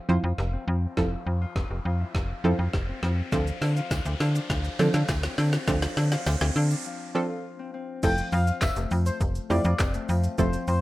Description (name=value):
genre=dance-pop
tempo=102 BPM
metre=4/4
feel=straight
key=F major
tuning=A4 = 442 Hz
part: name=Celtic harp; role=arpeggios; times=0.0-10.8 s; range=F3 to F4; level=-37 LUFS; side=left 4 dB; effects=sidechain pumping, tape echo
part: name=riser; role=sound effects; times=0.5-6.9 s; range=none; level=-39 LUFS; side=equal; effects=none
part: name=analog pluck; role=accompaniment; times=0.1-10.8 s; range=F3 to C5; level=-27 LUFS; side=right 2 dB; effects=chorus
part: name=slap-like FM bass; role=bass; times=0.1-10.8 s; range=F1 to D3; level=-25 LUFS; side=equal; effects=sidechain pumping
part: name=smooth R&B drum kit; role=drums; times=0.4-10.8 s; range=crash cymbal, handclaps, hi-hat, kick drum, shaker, snare drum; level=-30 LUFS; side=equal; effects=none
part: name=tambourine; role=percussion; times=3.9-9.9 s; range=none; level=-44 LUFS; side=right 3 dB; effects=none
part: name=octave-doubled lead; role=melody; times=8.0-10.8 s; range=C5 to G5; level=-31 LUFS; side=left 2 dB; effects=chorus, tape echo
room=digital ambience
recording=rough home demo mix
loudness=-23 LUFS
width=side -17 dB against mid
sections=0.0-8.0 A section; 8.0-10.8 B section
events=build-up 0.0-8.0; drum fill 0.0-6.9; riser 0.5-8.0; break 6.9-8.0; drop 8.0-10.8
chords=0.0 Fmaj7; 3.3 Dm7; 8.0 Fmaj7